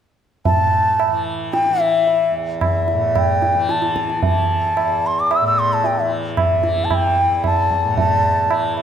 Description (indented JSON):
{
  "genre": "indian classical, Hindustani",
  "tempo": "112 BPM",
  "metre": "7/4",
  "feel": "straight",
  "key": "unclear",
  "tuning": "A4 = 440 Hz",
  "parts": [
    { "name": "bansuri", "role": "melody", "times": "0.5-8.7 s", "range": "E5 to E6", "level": "-17 LUFS", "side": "left 1 dB", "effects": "none" },
    { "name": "tanpura", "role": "drone", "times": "0.5-8.8 s", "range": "E2 to E3", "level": "-25 LUFS", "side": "left 2 dB", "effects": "none" },
    { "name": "tabla", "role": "percussion", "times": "0.5-8.8 s", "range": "none", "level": "-21 LUFS", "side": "right 3 dB", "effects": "none" }
  ],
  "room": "wet concert hall reverb, RT60 1.8 s",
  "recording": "none",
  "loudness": "-15 LUFS",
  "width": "side -8 dB against mid",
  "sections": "0.5-8.8 A section",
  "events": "none",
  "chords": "none"
}